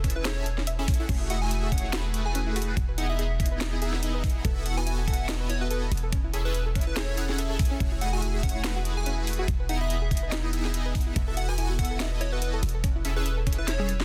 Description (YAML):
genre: future bass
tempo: 143 BPM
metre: 4/4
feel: swing 56% on 16ths, half-time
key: E major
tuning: A4 = 440 Hz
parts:
  - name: soft round pluck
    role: arpeggios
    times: 0.0-14.0 s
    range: C#4 to E5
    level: -41 LUFS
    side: equal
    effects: chorus, sidechain pumping, dub echo
  - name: big bright polysynth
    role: riff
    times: 0.0-13.9 s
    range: A3 to G#5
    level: -36 LUFS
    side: equal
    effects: phaser, tremolo, analog chorus, sidechain pumping
  - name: warm 808-style bass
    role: bass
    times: 0.0-14.0 s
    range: E1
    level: -31 LUFS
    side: equal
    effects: sidechain pumping
  - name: electronic kick drum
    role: drums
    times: 0.0-13.6 s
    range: none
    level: -29 LUFS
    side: equal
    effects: studio reverb
  - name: trap drum kit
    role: drums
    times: 0.0-14.0 s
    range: crash cymbal, hi-hat, snare drum, toms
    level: -37 LUFS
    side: equal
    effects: overdrive, studio reverb
  - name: plucky unison lead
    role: melody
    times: 0.2-14.0 s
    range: B4 to G#5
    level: -39 LUFS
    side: equal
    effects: sidechain pumping, dub echo
room: digital ambience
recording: dense, heavily limited modern master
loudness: -27 LUFS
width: mono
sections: 0.0-14.0 A section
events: drum fill 13.7-14.0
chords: 0.0 Amaj7/E; 1.1 F#m9/E; 2.8 Emaj7; 4.4 B7sus4/E; 5.9 Amaj7/E; 7.8 F#m9/E; 9.5 Emaj7; 11.2 B7sus4/E; 12.6 Amaj7/E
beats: 0.25 0.67 | 1.09 1.51 1.93 2.35 | 2.77 3.19 3.61 4.03 | 4.45 4.87 5.29 5.71 | 6.12 6.54 6.96 7.38 | 7.80 8.22 8.64 9.06 | 9.48 9.90 10.32 10.74 | 11.16 11.58 12.00 12.42 | 12.84 13.26 13.68